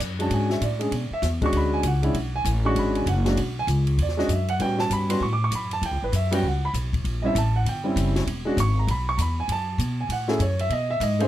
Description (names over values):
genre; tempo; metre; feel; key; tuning
jazz piano trio; 196 BPM; 4/4; swing 63% on 8ths; E mixolydian; A4 = 440 Hz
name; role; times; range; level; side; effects
upright bass; bass; 0.0-11.3 s; E1 to B2; -24 LUFS; equal; none
compact cocktail drum kit; drums; 0.0-11.3 s; hi-hat, kick drum, ride cymbal, snare drum; -32 LUFS; left 2 dB; none
warm upright piano; melody; 0.2-11.3 s; G3 to D6; -25 LUFS; right 1 dB; none
room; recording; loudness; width
little or no reverb; close, detailed microphones; -21 LUFS; side -13 dB against mid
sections
0.0-11.3 A section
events
upright piano solo 0.0-11.3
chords
0.0 E13; 4.6 A13; 7.0 A#dim7; 8.3 E6; 9.5 F#m; 10.7 B6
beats
0.01 0.31 0.62 | 0.92 1.23 1.53 1.84 | 2.15 2.45 2.76 3.06 | 3.37 3.68 3.98 4.29 | 4.59 4.90 5.21 5.51 | 5.82 6.12 6.43 6.74 | 7.04 7.35 7.65 7.96 | 8.26 8.57 8.88 9.18 | 9.48 9.79 10.10 10.40 | 10.71 11.01